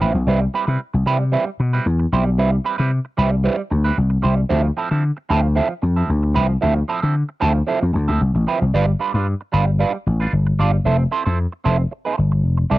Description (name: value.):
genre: disco.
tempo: 113 BPM.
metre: 4/4.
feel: straight.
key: D dorian.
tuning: A4 = 441 Hz.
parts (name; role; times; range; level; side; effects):
electric guitar at the edge of break-up; accompaniment; 0.0-12.8 s; F3 to D5; -21 LUFS; right 5 dB; wah.
vintage slap bass; bass; 0.0-12.8 s; F1 to D3; -17 LUFS; left 1 dB; tube saturation.
room: little or no reverb.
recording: dry, close 1970s-style studio recording.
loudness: -16 LUFS.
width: side -17 dB against mid.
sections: 0.0-8.7 A section; 8.7-12.8 B section.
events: none.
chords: 0.3 Cmaj7; 4.5 Dm9; 8.7 G7; 10.9 Fmaj7.